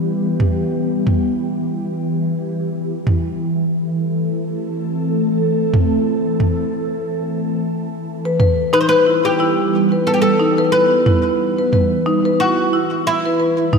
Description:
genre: organic downtempo.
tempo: 90 BPM.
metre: 4/4.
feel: swing 57% on 16ths.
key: E minor.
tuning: A4 = 442 Hz.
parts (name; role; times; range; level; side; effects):
ethereal airy pad; sustained chords; 0.0-13.8 s; E3 to A4; -19 LUFS; equal; ensemble chorus, built-in reverb, phaser.
bronze singing bowl; texture; 0.0-13.8 s; B4; -39 LUFS; left 9 dB; none.
electronic toms; drums; 0.4-13.8 s; none; -17 LUFS; right 1 dB; none.
marimba with medium mallets; arpeggios; 8.3-13.8 s; D#4 to B4; -18 LUFS; left 2 dB; digital delay.
oud; melody; 8.7-13.8 s; E4 to C5; -17 LUFS; equal; digital delay.
room: wet lush hall reverb, RT60 2.7 s.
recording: bright 1980s-style digital production.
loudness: -15 LUFS.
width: side -5 dB against mid.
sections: 0.0-13.8 A section.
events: none.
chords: 0.0 Em; 2.7 Am/E; 8.1 Em.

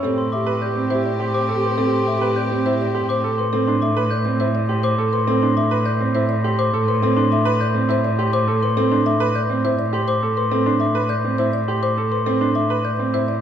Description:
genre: classical, minimalist pattern music.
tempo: 103 BPM.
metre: 3/4.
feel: straight.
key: A minor.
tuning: A4 = 440 Hz.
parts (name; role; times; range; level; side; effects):
marimba with medium mallets; melody; 0.0-13.4 s; A4 to E5; -25 LUFS; left 5 dB; none.
mellow clarinet; second line; 0.0-3.3 s; G4; -26 LUFS; right 1 dB; none.
rich chamber violin section; sustained chords; 0.0-3.3 s; C4 to G4; -28 LUFS; left 2 dB; none.
bright grand piano; arpeggios; 0.0-13.3 s; C4 to B4; -23 LUFS; right 5 dB; none.
rich cello; bass; 0.0-13.4 s; A2; -22 LUFS; right 1 dB; none.
glockenspiel with soft plastic mallets; arpeggios; 0.2-13.0 s; C6 to G6; -24 LUFS; left 3 dB; none.
room: moderate recital hall reverb, RT60 1.4 s.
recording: vinyl crackle.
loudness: -17 LUFS.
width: side -9 dB against mid.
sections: 0.0-13.4 A section.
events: none.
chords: 0.0 Am7.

